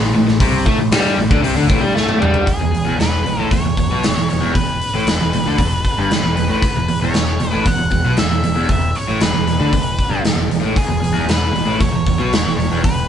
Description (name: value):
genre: classic rock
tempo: 116 BPM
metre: 4/4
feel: straight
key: unclear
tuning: A4 = 440 Hz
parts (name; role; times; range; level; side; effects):
- crunchy overdriven guitar; riff; 0.0-13.1 s; E2 to A3; -21 LUFS; left 4 dB; none
- distorted electric guitar; riff; 0.0-13.1 s; E2 to A3; -21 LUFS; right 6 dB; distortion
- growling picked electric bass; bass; 0.0-13.1 s; E1 to A2; -22 LUFS; equal; overdrive
- big rock drum kit; drums; 0.3-13.0 s; hi-hat, kick drum, snare drum, toms; -18 LUFS; equal; none
- octave-fuzz lead guitar; melody; 2.5-13.1 s; G#4 to F#5; -22 LUFS; equal; distortion
room: moderate studio reverb, RT60 0.7 s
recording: band playing live in one room, nothing above 10.6 kHz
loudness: -14 LUFS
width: side -9 dB against mid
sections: 0.0-2.5 A section; 2.5-13.1 B section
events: drum fill 2.0-2.5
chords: 0.0 Gsus24; 2.5 E5